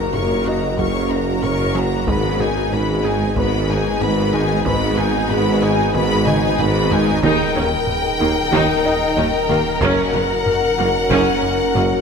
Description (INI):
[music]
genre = cinematic, hybrid orchestral and electronic film score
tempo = 93 BPM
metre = 4/4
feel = straight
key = G# minor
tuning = A4 = 440 Hz
[part]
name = bright symphonic violin section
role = melody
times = 0.0-12.0 s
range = F#5 to C#6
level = -24 LUFS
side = left 4 dB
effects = none
[part]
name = warm symphonic violin section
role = second line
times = 0.0-12.0 s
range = G#4 to C#5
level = -26 LUFS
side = left 3 dB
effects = none
[part]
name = rich symphonic viola section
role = accompaniment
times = 0.0-11.8 s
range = A#3 to A#4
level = -25 LUFS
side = equal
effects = none
[part]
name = deep dark ambient pad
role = sustained chords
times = 0.0-12.0 s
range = G#3 to G5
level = -25 LUFS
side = equal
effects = chorus, built-in reverb
[part]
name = mellow French horn section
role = sustained chords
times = 0.0-12.0 s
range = A#3 to A#4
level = -25 LUFS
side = left 4 dB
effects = none
[part]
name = detuned saw bass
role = bass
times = 0.0-12.0 s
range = D#1 to G#1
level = -30 LUFS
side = equal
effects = none
[part]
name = rich symphonic cello section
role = bass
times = 0.0-11.8 s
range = D#2 to G#2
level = -26 LUFS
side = right 3 dB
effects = none
[part]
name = warm symphonic double bass section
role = bass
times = 0.0-11.8 s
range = F#1 to D#2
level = -27 LUFS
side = right 4 dB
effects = none
[part]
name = warm tuba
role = bass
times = 0.0-11.9 s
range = F#1 to D#2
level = -24 LUFS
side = right 4 dB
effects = none
[part]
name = felt-muted upright piano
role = texture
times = 0.0-12.0 s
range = D#4 to D#5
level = -30 LUFS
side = left 2 dB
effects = none
[part]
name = rubbery square bass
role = riff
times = 0.1-11.9 s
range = D#2 to G#3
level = -29 LUFS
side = left 3 dB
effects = none
[part]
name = taiko ensemble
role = drums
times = 0.1-12.0 s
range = none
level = -28 LUFS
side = equal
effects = none
[part]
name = mallet-like synth pluck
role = arpeggios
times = 0.5-11.9 s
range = D#3 to G#4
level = -29 LUFS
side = right 6 dB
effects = none
[sound]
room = wet scoring stage reverb, RT60 1.5 s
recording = none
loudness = -15 LUFS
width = side -6 dB against mid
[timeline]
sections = 0.0-12.0 A section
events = drum fill 6.3-7.2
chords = 0.0 F#; 2.1 G#m; 7.2 D#; 9.8 F#